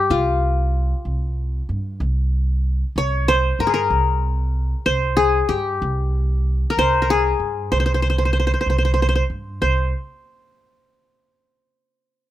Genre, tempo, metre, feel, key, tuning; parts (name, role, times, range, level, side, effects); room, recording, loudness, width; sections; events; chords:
arabic; 63 BPM (dotted quarters); 6/8; straight; C maqam hijaz; A4 = 439 Hz
qanun; melody; 0.0-9.9 s; F4 to Db5+25c; -20 LUFS; left 2 dB
upright bass; bass; 0.0-9.9 s; C2 to G2; -20 LUFS; right 1 dB
light reverb; close, detailed microphones; -18 LUFS; side -13 dB against mid
0.0-9.6 A section; 9.6-11.5 B section